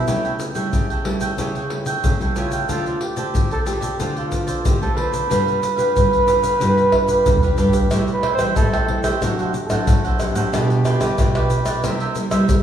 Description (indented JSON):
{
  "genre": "samba and choro",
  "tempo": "92 BPM",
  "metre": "4/4",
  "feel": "straight",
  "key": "A minor from 7.9 s",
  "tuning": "A4 = 439 Hz",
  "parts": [
    { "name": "breathy flugelhorn", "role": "melody", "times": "0.0-12.1 s", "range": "E4 to C5", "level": "-22 LUFS", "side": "right 1 dB", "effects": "none" },
    { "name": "cavaquinho", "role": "accompaniment", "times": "0.0-12.6 s", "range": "D4 to G5", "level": "-27 LUFS", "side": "right 4 dB", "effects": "none" },
    { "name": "nylon-string guitar", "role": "accompaniment", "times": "0.0-12.6 s", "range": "G2 to B4", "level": "-25 LUFS", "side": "equal", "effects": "none" },
    { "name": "nylon-string guitar", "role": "bass", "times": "0.0-12.6 s", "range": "G2 to G3", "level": "-23 LUFS", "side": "right 1 dB", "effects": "none" },
    { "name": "egg shaker, surdo, pandeiro and tamborim", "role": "percussion", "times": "0.1-12.6 s", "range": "none", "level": "-21 LUFS", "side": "left 1 dB", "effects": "none" }
  ],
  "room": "wet recital hall reverb, RT60 1.4 s",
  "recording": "recorded in a church or concert hall, small room ambience",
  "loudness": "-17 LUFS",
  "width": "side -9 dB against mid",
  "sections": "0.0-7.9 A section; 7.9-12.6 B section",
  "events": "drum fill 6.9-7.9",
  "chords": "0.1 A7/C#; 2.7 Dm7; 5.3 G7; 7.9 Am7; 9.2 D7/A; 10.5 G7/B; 11.8 C7",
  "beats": "| 0.07 0.73 1.38 2.03 | 2.69 3.34 4.00 4.65 | 5.30 5.96 6.61 7.26 | 7.92 8.57 9.22 9.88 | 10.53 11.18 11.84 12.49"
}